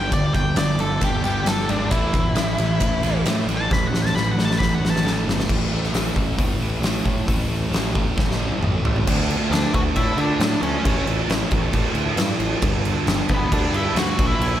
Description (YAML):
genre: quiet-loud alternative rock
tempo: 134 BPM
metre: 4/4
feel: straight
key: unclear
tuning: A4 = 440 Hz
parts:
  - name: octave-fuzz lead guitar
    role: melody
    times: 0.0-5.1, 9.5-14.6 s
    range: B3 to B5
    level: -25 LUFS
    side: left 1 dB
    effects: distortion
  - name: thick fuzz guitar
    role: riff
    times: 0.0-14.6 s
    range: G2 to D4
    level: -25 LUFS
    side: right 1 dB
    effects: distortion
  - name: fuzz picked electric bass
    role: bass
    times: 0.0-14.5 s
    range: G1 to D3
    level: -25 LUFS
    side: equal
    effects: overdrive
  - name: oversized low-tuned drum kit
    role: drums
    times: 0.1-14.5 s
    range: crash cymbal, hi-hat, kick drum, ride cymbal, snare drum, toms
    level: -22 LUFS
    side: equal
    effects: none
room: light reverb, small room ambience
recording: none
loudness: -18 LUFS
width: side -11 dB against mid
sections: 0.0-5.5 A section; 5.5-9.1 B section; 9.1-14.6 C section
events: lead electric guitar solo 0.0-5.5; drum fill 3.7-5.5, 8.2-9.1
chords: 0.0 G5; 1.9 A5; 9.1 Dsus2; 10.8 A; 12.6 G6